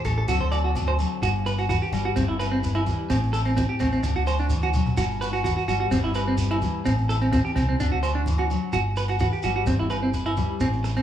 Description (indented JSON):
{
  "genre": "highlife guitar band",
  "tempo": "128 BPM",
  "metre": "4/4",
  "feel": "straight",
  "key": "G major",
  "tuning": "A4 = 439 Hz",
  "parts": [
    { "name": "picked steel-string acoustic guitar", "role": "accompaniment", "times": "0.0-11.0 s", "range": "G2 to B4", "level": "-30 LUFS", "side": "left 5 dB", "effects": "none" },
    { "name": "fingered electric bass", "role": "bass", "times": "0.0-11.0 s", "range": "G1 to D2", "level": "-26 LUFS", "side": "equal", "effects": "none" },
    { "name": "shekere", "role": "percussion", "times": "0.0-11.0 s", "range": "none", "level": "-33 LUFS", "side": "right 1 dB", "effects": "none" },
    { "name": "clean electric guitar", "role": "arpeggios", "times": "0.1-11.0 s", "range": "C4 to D5", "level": "-26 LUFS", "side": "right 2 dB", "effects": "analog delay" },
    { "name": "agogo bells", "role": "percussion", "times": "0.1-11.0 s", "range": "none", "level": "-33 LUFS", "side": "right 1 dB", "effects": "none" },
    { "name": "congas", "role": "percussion", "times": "0.1-10.7 s", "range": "none", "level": "-31 LUFS", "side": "left 1 dB", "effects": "none" }
  ],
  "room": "light reverb, studio reverb",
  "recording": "small room ambience",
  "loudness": "-21 LUFS",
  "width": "side -10 dB against mid",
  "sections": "0.0-11.0 A section",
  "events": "drum fill 4.5-5.0",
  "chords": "0.3 D7; 1.2 Gmaj7; 2.2 Cmaj7/G (rootless); 3.1 Am; 4.0 D; 5.0 Gmaj7; 5.9 Cmaj7/G (rootless); 6.9 Am; 7.8 D; 8.7 Gmaj7; 9.7 Cmaj7/G (rootless)"
}